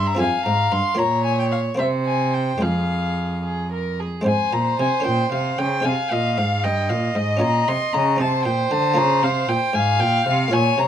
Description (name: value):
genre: classical, baroque-style sonata movement with continuo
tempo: 76 BPM (dotted quarters)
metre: 6/8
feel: rubato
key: F minor, Ab major from 4.3 s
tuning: A4 = 441 Hz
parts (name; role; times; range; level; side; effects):
- dark violin; melody; 0.0-10.9 s; Eb5 to C6; -22 LUFS; left 5 dB; none
- dark violin; second line; 0.0-10.9 s; Ab4 to F5; -24 LUFS; right 4 dB; none
- buff-stop harpsichord; accompaniment; 0.0-10.9 s; F2 to Eb5; -26 LUFS; equal; none
- rich cello; bass; 0.0-10.9 s; F2 to D3; -23 LUFS; right 2 dB; none
room: light reverb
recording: close, detailed microphones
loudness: -18 LUFS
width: side -9 dB against mid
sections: 0.0-4.3 A section; 4.3-10.9 A section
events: none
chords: 0.2 Fm; 1.0 Bbm; 1.8 C7(no3); 2.6 Fm; 4.3 Ab; 5.1 Bbm69; 5.9 Ab; 7.4 Bbm; 8.2 Cm13; 9.0 Bbm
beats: 0.20 | 0.99 1.79 | 2.62 3.44 | 4.26 5.06 | 5.85 6.64 | 7.42 8.20 | 8.97 9.75 | 10.53